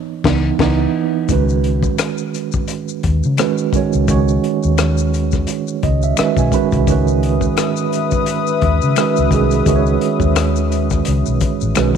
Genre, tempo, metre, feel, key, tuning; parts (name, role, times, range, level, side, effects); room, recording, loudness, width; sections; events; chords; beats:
R&B, neo-soul; 86 BPM; 4/4; swing 56% on 16ths; C# minor; A4 = 440 Hz
mellow tine electric piano; accompaniment; 0.0-12.0 s; D#3 to B5; -17 LUFS; right 9 dB; medium stereo tremolo
crunchy breakbeat drum kit; drums; 0.2-12.0 s; crash cymbal, hi-hat, kick drum, rim click, snare drum; -20 LUFS; left 5 dB
vintage muted fingered electric bass; bass; 0.3-11.9 s; A1 to C#3; -17 LUFS; left 2 dB; transformer saturation
maracas and finger snaps; percussion; 1.3-11.9 s; -29 LUFS; left 16 dB
warm analog pad; sustained chords; 6.9-12.0 s; B4 to D#6; -22 LUFS; left 14 dB; chorus
light reverb, studio reverb; 1960s-style stereo with parts hard left and right; -14 LUFS; side -7 dB against mid
0.0-1.3 A section; 1.3-12.0 B section
band accent 0.0-1.3; tine electric piano solo 0.0-1.3; tine electric piano fill 5.5-6.9
0.0 C#m9
0.59 | 1.29 1.99 2.69 3.38 | 4.08 4.78 5.48 6.17 | 6.87 7.57 8.27 8.96 | 9.66 10.36 11.06 11.76